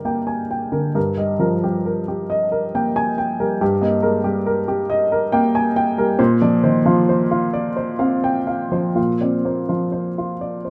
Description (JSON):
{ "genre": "neoclassical minimalist piano", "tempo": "41-47 BPM (dotted quarters)", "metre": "6/8", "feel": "rubato", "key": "Eb major", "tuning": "A4 = 441 Hz", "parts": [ { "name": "warm baby grand piano", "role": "solo", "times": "0.0-10.7 s", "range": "G2 to Ab5", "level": "-20 LUFS", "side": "equal", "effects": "none" } ], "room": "moderate studio reverb, RT60 0.6 s", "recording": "none", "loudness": "-19 LUFS", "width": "mono", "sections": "0.0-10.7 A section", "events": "none", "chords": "0.0 Gm; 1.0 Eb/G; 6.2 Bbadd9" }